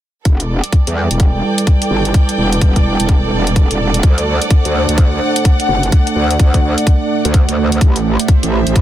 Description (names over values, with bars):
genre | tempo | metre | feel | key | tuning
bass house | 127 BPM | 4/4 | swing 62% on 16ths | E minor | A4 = 444 Hz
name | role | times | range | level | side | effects
dark analog pad | sustained chords | 0.9-8.8 s | G3 to A5 | -18 LUFS | right 3 dB | chorus, vintage 12-bit sampler grit, sidechain pumping
metallic wobble bass | bass | 0.3-8.8 s | E1 to E2 | -17 LUFS | equal | chorus, tube saturation, sidechain pumping
electronic hi-hat | drums | 0.3-8.8 s | none | -21 LUFS | equal | none
electronic kick drum | drums | 0.3-8.8 s | none | -10 LUFS | equal | none
rich symphonic string section | texture | 0.3-8.8 s | G4 to G5 | -21 LUFS | equal | sidechain pumping
room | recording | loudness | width
light reverb, digital ambience | dense, heavily limited modern master | -11 LUFS | side -12 dB against mid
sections
0.3-8.8 A section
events
none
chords
0.3 Em; 4.0 D7; 7.8 Am